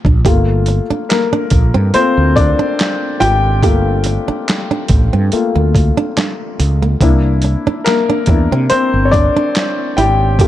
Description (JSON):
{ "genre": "R&B, neo-soul", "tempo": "71 BPM", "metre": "4/4", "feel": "swing 54% on 16ths", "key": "G dorian", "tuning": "A4 = 440 Hz", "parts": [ { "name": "warm upright piano", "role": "accompaniment", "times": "0.0-10.5 s", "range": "A3 to G5", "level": "-15 LUFS", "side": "left 4 dB", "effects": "none" }, { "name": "dusty soul sampler-style drum kit", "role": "drums", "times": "0.0-10.5 s", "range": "handclaps, hi-hat, kick drum, snare drum", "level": "-16 LUFS", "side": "equal", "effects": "overdrive" }, { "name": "flamenco guitar", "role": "second line", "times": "0.1-10.5 s", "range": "Bb3 to G4", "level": "-20 LUFS", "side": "right 6 dB", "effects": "none" }, { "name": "mellow fretless electric bass", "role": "bass", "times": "0.1-10.5 s", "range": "G1 to C3", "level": "-14 LUFS", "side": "equal", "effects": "wide subtle chorus" } ], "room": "light reverb, small room ambience", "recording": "dark, warm production", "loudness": "-11 LUFS", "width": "side -13 dB against mid", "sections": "0.2-10.5 A section", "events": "upright piano solo 0.2-10.5", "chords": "0.2 Gm9; 7.0 C9", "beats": "| 0.24 1.09 1.93 2.78 | 3.62 4.47 5.31 6.16 | 7.00 7.85 8.69 9.54 | 10.38" }